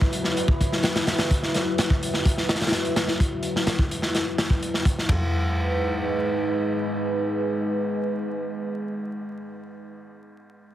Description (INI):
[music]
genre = breakbeat, breaks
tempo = 127 BPM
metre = 4/4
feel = straight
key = G# minor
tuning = A4 = 442 Hz
[part]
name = deep dark ambient pad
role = sustained chords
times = 0.0-9.3 s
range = F#3 to B4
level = -27 LUFS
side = equal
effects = chorus, built-in reverb, sidechain pumping
[part]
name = crunchy breakbeat drum kit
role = drums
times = 0.0-5.2 s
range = hi-hat, kick drum, ride cymbal, snare drum, toms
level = -23 LUFS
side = equal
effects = none
[sound]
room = moderate studio reverb, RT60 0.6 s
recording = heavily compressed radio sound, multiband compression, vinyl crackle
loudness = -22 LUFS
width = side -12 dB against mid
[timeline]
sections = 0.0-5.1 A section; 5.1-8.9 B section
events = none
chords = 0.0 F#7sus4; 5.1 G#m